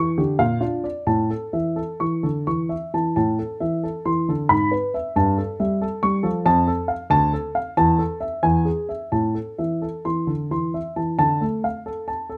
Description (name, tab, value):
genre	classical, baroque-style suite movement for grand piano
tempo	86-93 BPM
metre	3/4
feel	rubato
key	A minor from 3.2 s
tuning	A4 = 441 Hz
part	dark baby grand piano	solo	0.0-12.4 s	D2 to C#6	-22 LUFS	equal	none
room	light reverb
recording	close, detailed microphones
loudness	-22 LUFS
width	mono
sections	0.0-11.2 A section; 11.2-12.4 A section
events	none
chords	0.4 Bb; 1.1 A; 3.2 Am; 4.5 E/G#; 5.2 A7/G; 6.5 F; 7.1 Dm; 7.8 A5/E; 8.4 E; 9.1 Am; 11.2 Dm